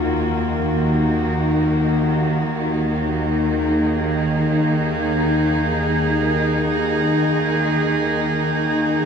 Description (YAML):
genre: dark ambient drone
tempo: free time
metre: none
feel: none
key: Eb minor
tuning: A4 = 437 Hz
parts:
  - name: warm chamber cello section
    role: sustained chords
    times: 0.0-9.1 s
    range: Eb3 to Ab4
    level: -19 LUFS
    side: equal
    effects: none
  - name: dark grand piano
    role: arpeggios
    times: 0.0-9.1 s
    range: none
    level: barely audible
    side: none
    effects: none
  - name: analog drone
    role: drone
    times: 0.0-9.1 s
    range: Eb2 to Eb3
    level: -21 LUFS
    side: equal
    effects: chorus
room: wet spring reverb, RT60 2.6 s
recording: echo-heavy mix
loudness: -17 LUFS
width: side -6 dB against mid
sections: 0.0-9.1 A section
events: none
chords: 0.0 Ebm